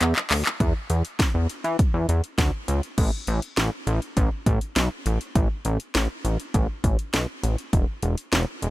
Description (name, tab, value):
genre	synth-pop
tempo	101 BPM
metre	4/4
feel	straight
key	unclear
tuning	A4 = 442 Hz
part	chorused synth bass	bass	0.0-8.7 s	E1 to E3	-22 LUFS	equal	none
part	house drum kit	drums	0.0-8.7 s	crash cymbal, handclaps, hi-hat, kick drum, snare drum	-24 LUFS	equal	overdrive
room	little or no reverb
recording	none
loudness	-22 LUFS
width	side -17 dB against mid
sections	0.6-3.0 A section; 3.0-8.7 B section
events	drum fill 0.0-0.6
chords	none